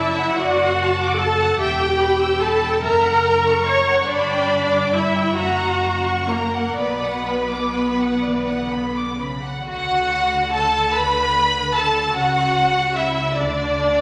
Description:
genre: classical, slow romantic movement for string orchestra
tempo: 40-51 BPM (dotted quarters)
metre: 6/8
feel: rubato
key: B minor, D major from 9.7 s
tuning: A4 = 437 Hz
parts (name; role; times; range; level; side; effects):
- rich studio violin section; melody; 0.0-14.0 s; A#4 to C#6; -24 LUFS; equal; none
- clear studio violin section; second line; 0.0-14.0 s; D4 to E6; -28 LUFS; equal; none
- warm studio viola section; accompaniment; 0.0-14.0 s; A#3 to C#5; -23 LUFS; equal; none
- dark studio double bass section; bass; 0.0-14.0 s; E1 to D2; -33 LUFS; equal; none
- warm studio cello section; bass; 0.0-14.0 s; E2 to E3; -32 LUFS; equal; none
room: wet scoring stage reverb, RT60 1.6 s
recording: none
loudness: -19 LUFS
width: mono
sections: 0.0-9.7 A section; 9.7-14.0 B section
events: none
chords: 0.0 D/F#; 1.6 Em; 2.8 F#; 4.1 G; 5.4 F#; 6.8 Bm; 9.7 D; 12.1 C#madd11; 13.4 N.C.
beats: 0.36 | 1.58 2.81 | 4.08 5.37 | 6.78 8.23 | 9.67 10.94 | 12.15 13.39

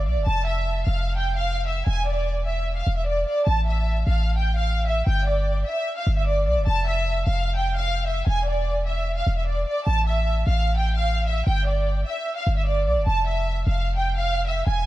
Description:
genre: hip hop, trap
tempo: 150 BPM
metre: 4/4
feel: half-time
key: unclear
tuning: A4 = 440 Hz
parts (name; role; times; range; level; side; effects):
- warm studio violin section; melody; 0.0-14.9 s; D5 to A5; -25 LUFS; right 1 dB; none
- warm 808-style bass; bass; 0.0-14.9 s; E1 to B1; -22 LUFS; equal; none
room: studio ambience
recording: dark, warm production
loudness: -21 LUFS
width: side -15 dB against mid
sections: 0.0-3.5 A section; 3.5-14.9 B section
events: none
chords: 0.3 Fmaj7(no3); 1.9 E7(no3); 3.5 A5; 5.1 G5; 6.7 Fmaj7(no3); 8.3 E7(no3); 9.9 A5; 11.5 G5; 13.1 Fmaj7(no3)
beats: | 0.27 0.67 1.07 1.47 | 1.87 2.27 2.67 3.07 | 3.47 3.87 4.27 4.67 | 5.07 5.47 5.87 6.27 | 6.67 7.07 7.47 7.87 | 8.27 8.67 9.07 9.47 | 9.87 10.27 10.67 11.07 | 11.47 11.87 12.27 12.67 | 13.07 13.47 13.87 14.27 | 14.67

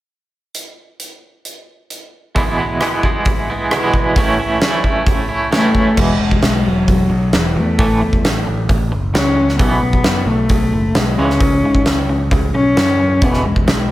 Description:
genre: quiet-loud alternative rock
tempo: 132 BPM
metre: 4/4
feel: straight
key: E major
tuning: A4 = 442 Hz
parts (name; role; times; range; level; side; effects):
- huge arena drum kit; drums; 0.5-13.8 s; crash cymbal, hi-hat, kick drum, rim click, snare drum; -17 LUFS; equal; none
- twangy electric guitar; arpeggios; 2.3-13.9 s; E2 to E4; -20 LUFS; right 2 dB; tremolo, analog delay
- dark cello; melody; 5.5-13.9 s; E3 to C#4; -16 LUFS; left 2 dB; none
- picked electric bass; bass; 6.0-13.9 s; E1 to G#2; -19 LUFS; equal; none
room: moderate large studio reverb, RT60 1.2 s, studio ambience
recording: none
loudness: -13 LUFS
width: side -15 dB against mid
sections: 0.6-2.4 A section; 2.4-6.0 B section; 6.0-13.9 C section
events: none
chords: 0.6 N.C.; 2.4 E; 4.2 A; 6.0 E; 7.8 A; 9.6 Bsus4; 11.2 C#m; 13.2 E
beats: | 0.55 1.00 1.46 1.91 | 2.36 2.81 3.27 3.72 | 4.17 4.62 5.07 5.53 | 5.98 6.43 6.88 7.34 | 7.79 8.24 8.69 9.15 | 9.60 10.05 10.51 10.96 | 11.41 11.87 12.32 12.77 | 13.22 13.68

